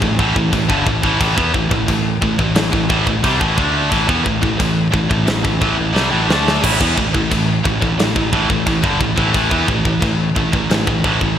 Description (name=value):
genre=heavy metal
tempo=88 BPM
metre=4/4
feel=straight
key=unclear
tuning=A4 = 436 Hz
part: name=heavy high-gain guitar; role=riff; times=0.0-11.4 s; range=G2 to D4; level=-18 LUFS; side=right 1 dB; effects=distortion
part: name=heavy high-gain guitar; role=riff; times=0.0-11.4 s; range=G2 to D4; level=-21 LUFS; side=equal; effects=distortion
part: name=picked electric bass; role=bass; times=0.0-11.4 s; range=G1 to E2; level=-21 LUFS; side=equal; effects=none
part: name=tight metal drum kit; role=drums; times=0.0-11.4 s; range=crash cymbal, kick drum, snare drum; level=-19 LUFS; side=equal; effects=gated reverb
room=light reverb, small room reverb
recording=bright 1980s-style digital production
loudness=-14 LUFS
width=side -9 dB against mid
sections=0.0-6.6 A section; 6.6-11.4 A section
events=drum fill 6.0-6.6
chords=0.0 Am; 6.6 A5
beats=0.52 | 1.20 1.88 2.56 3.24 | 3.92 4.59 5.27 5.95 | 6.63 7.31 7.98 8.66 | 9.34 10.02 10.69 11.37